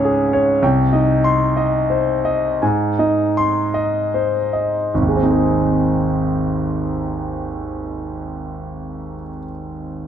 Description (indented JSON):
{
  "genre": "neoclassical minimalist piano",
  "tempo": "50-70 BPM",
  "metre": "4/4",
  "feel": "rubato",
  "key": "Ab major",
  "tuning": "A4 = 440 Hz",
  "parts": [
    { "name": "clear concert grand piano", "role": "solo", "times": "0.0-10.1 s", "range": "Ab1 to C6", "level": "-16 LUFS", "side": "equal", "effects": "none" }
  ],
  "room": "light reverb",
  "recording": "dark, warm production",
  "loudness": "-16 LUFS",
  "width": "side -9 dB against mid",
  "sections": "0.0-4.9 A section; 4.9-9.6 B section",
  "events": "slowing down 0.0-4.9",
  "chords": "0.0 Db; 0.6 Cm; 2.6 Ab"
}